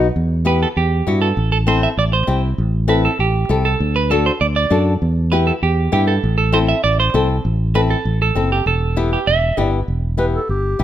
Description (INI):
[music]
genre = latin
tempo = 197 BPM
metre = 4/4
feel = straight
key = E minor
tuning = A4 = 439 Hz
[part]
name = flamenco guitar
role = accompaniment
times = 0.0-10.8 s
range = B3 to A4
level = -20 LUFS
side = left 4 dB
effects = none
[part]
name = fingered electric bass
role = bass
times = 0.0-10.8 s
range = E1 to G2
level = -17 LUFS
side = equal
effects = none
[part]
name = semi-hollow electric guitar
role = second line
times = 0.5-9.7 s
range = G4 to E5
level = -19 LUFS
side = right 5 dB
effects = none
[part]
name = mellow clarinet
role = melody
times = 10.2-10.8 s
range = G4 to B4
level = -21 LUFS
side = equal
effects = none
[sound]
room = light reverb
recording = none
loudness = -14 LUFS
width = side -11 dB against mid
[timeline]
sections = 0.2-9.9 A section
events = clean electric guitar solo 0.2-9.9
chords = 0.2 Em; 1.4 Am; 3.8 D; 5.0 Em; 6.2 Am; 8.7 Em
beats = | 0.15 0.46 0.76 1.07 | 1.37 1.67 1.98 2.28 | 2.59 2.89 3.19 3.50 | 3.80 4.11 4.41 4.71 | 5.02 5.32 5.62 5.93 | 6.23 6.54 6.84 7.15 | 7.45 7.75 8.06 8.36 | 8.67 8.97 9.28 9.58 | 9.88 10.19 10.49 10.80